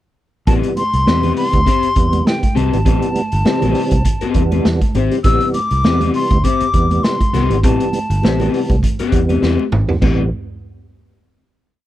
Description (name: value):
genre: funk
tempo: 101 BPM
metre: 4/4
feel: swing 56% on 16ths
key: A minor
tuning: A4 = 440 Hz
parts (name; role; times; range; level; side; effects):
- hollow concert flute; melody; 0.5-8.8 s; G5 to E6; -20 LUFS; left 2 dB; none
- electric guitar at the edge of break-up; accompaniment; 0.5-10.2 s; C4 to C5; -20 LUFS; left 8 dB; none
- tonewheel organ; stabs; 0.5-10.3 s; B2 to C4; -21 LUFS; right 3 dB; overdrive, chorus vibrato, slow rotary speaker
- fingered electric bass; bass; 0.5-10.3 s; G1 to E2; -17 LUFS; equal; none
- vintage drum kit; drums; 0.5-10.2 s; crash cymbal, hi-hat, kick drum, snare drum, toms; -18 LUFS; right 1 dB; none
- congas; percussion; 0.5-10.3 s; none; -26 LUFS; right 4 dB; none
room: small room ambience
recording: none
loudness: -13 LUFS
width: side -13 dB against mid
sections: 0.5-10.0 groove; 10.0-11.9 final chord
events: drum fill 9.4-10.0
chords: 0.5 Am9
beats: | 0.47 1.07 1.67 2.26 | 2.86 3.45 4.05 4.65 | 5.25 5.84 6.44 7.04 | 7.63 8.23 8.83 9.42 | 10.02